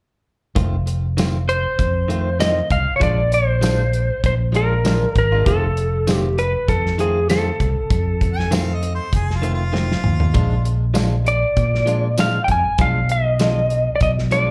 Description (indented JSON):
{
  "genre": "straight-eighth soul blues",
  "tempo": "98 BPM",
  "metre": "4/4",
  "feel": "swing 54% on 16ths",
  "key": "F mixolydian",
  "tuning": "A4 = 440 Hz",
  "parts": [
    { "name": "direct-recorded clean electric guitar", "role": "stabs", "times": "0.6-14.5 s", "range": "Eb3 to F4", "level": "-29 LUFS", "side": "equal", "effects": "slapback echo, tape echo" },
    { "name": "fingered electric bass", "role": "bass", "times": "0.6-14.5 s", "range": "F1 to Bb2", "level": "-22 LUFS", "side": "equal", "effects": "none" },
    { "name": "warm soul drum kit", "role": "drums", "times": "0.6-14.5 s", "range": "hi-hat, kick drum, snare drum, tambourine, toms", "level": "-24 LUFS", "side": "equal", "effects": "none" },
    { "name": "electric slide guitar", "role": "melody", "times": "1.5-14.5 s", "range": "Ab4 to Ab5", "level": "-22 LUFS", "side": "equal", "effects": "slapback echo" },
    { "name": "warm harmonica", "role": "second line", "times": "8.3-10.7 s", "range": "F4 to Ab5", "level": "-30 LUFS", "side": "equal", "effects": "slapback echo" }
  ],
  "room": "little or no reverb",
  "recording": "live gig heard through the venue's PA, club reverb",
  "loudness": "-19 LUFS",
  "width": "mono",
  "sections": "0.6-14.5 A section",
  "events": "drum fill 9.7-10.4",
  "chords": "0.6 F7; 3.0 Bb7; 5.5 F7; 10.4 Bb7; 12.8 Bdim7",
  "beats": "| 0.56 1.17 1.79 2.40 | 3.01 3.62 4.24 4.85 | 5.46 6.07 6.68 7.29 | 7.91 8.52 9.13 9.74 | 10.35 10.96 11.57 12.19 | 12.80 13.41 14.02"
}